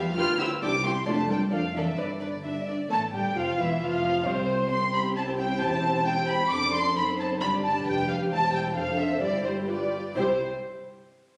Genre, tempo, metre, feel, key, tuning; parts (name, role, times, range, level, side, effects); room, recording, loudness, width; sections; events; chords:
quick classical-period movement for string orchestra; 133 BPM; 2/4; straight; C major; A4 = 440 Hz
dark studio violin section; melody; 0.0-10.4 s; C5 to F6; -30 LUFS; equal
dark symphonic viola section; accompaniment; 0.0-10.4 s; C3 to G4; -35 LUFS; equal
dark symphonic cello section; bass; 0.0-10.4 s; C2 to F4; -36 LUFS; equal
rich symphonic double bass section; bass; 0.0-10.4 s; E1 to E2; -38 LUFS; equal
warm chamber violin section; second line; 0.2-10.4 s; C4 to G5; -35 LUFS; equal
wet scoring stage reverb, RT60 1.6 s; recorded on a phone in the room, studio reverb; -27 LUFS; mono
0.0-2.9 A section; 2.9-10.2 B section
0.2 G7/D; 0.6 C; 1.1 Dm/F; 2.0 G5; 2.9 Fmaj9; 3.8 F5; 4.7 C; 5.6 C/E; 6.5 Dm7/F; 7.0 F#dim7; 7.4 G5; 7.9 G7/F; 8.3 C/E; 8.8 Dm7/F; 9.2 C/G; 9.7 G7; 10.2 C